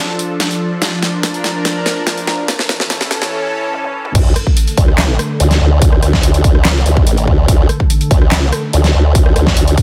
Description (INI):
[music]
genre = heavy wobble dubstep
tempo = 144 BPM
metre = 4/4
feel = half-time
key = D harmonic minor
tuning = A4 = 440 Hz
[part]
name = lush unison pad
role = sustained chords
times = 0.0-9.8 s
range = D3 to Bb4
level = -23 LUFS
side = equal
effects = chorus, phaser, sidechain pumping
[part]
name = dubstep drum kit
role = drums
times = 0.2-9.8 s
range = crash cymbal, handclaps, hi-hat, rim click, snare drum, toms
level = -20 LUFS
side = equal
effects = overdrive, high-pass filter on hats, studio ambience, high-pass filter on snare, high-pass filter on toms, high-pass filter on cymbals
[part]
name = formant-sweep wobble bass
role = bass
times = 4.2-9.8 s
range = A1 to D2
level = -14 LUFS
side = equal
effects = chorus, overdrive
[part]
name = electronic kick drum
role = drums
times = 4.2-9.8 s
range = none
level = -14 LUFS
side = equal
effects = studio ambience
[sound]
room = digital ambience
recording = dense, heavily limited modern master, high-pass filter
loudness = -13 LUFS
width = mono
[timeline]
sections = 0.0-4.2 A section; 4.2-9.8 B section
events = build-up 0.0-4.2; drum fill 0.0-3.3, 3.7-4.2; break 3.3-4.2; drop 4.2-9.8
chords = 0.0 Dm; 0.8 Bb; 2.5 A; 4.2 D5